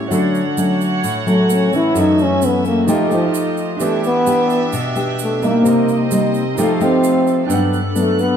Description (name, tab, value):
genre	bossa nova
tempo	130 BPM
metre	4/4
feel	straight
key	D major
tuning	A4 = 440 Hz
part	nylon-string guitar	accompaniment	0.0-8.4 s	F#2 to G4	-17 LUFS	left 1 dB	none
part	warm baby grand piano	accompaniment	0.0-8.4 s	C4 to G5	-25 LUFS	right 6 dB	none
part	dark studio string section	sustained chords	0.0-8.4 s	A3 to F#6	-24 LUFS	right 1 dB	none
part	egg shaker	percussion	0.1-8.4 s	none	-31 LUFS	right 9 dB	none
part	breathy trombone	melody	1.3-8.4 s	F3 to E4	-17 LUFS	equal	none
room	moderate large studio reverb, RT60 1.4 s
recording	band playing live in one room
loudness	-14 LUFS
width	side -8 dB against mid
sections	0.1-8.4 A section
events	trombone solo 0.1-8.4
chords	0.1 Dmaj7; 2.0 F#m7; 2.9 F9; 3.8 Em7; 5.7 Cm7; 6.6 F9; 7.5 Gmaj7